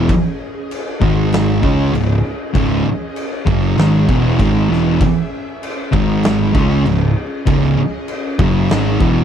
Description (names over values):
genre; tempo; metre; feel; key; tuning
stoner and doom metal; 98 BPM; 4/4; straight; C# minor; A4 = 440 Hz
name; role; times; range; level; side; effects
string machine, violas; sustained chords; 0.0-9.2 s; G#3 to E5; -27 LUFS; equal; ensemble chorus
thick fuzz guitar; riff; 0.0-9.2 s; C#2 to C#4; -18 LUFS; left 9 dB; distortion
thick fuzz guitar; riff; 0.0-9.2 s; C#2 to C#4; -17 LUFS; right 8 dB; distortion
fuzz picked electric bass; bass; 0.0-9.2 s; C#1 to C#2; -19 LUFS; equal; overdrive, tube saturation
oversized low-tuned drum kit; drums; 0.1-9.1 s; crash cymbal, kick drum, snare drum; -20 LUFS; equal; none
room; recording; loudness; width
little or no reverb; none; -13 LUFS; side -8 dB against mid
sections
0.0-9.2 A section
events
none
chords
0.0 C#m; 1.0 G#5; 1.6 C#m; 5.9 G#5; 6.5 C#m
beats
| 0.09 0.70 1.32 1.94 | 2.55 3.17 3.78 4.39 | 5.01 5.62 6.24 6.86 | 7.47 8.09 8.70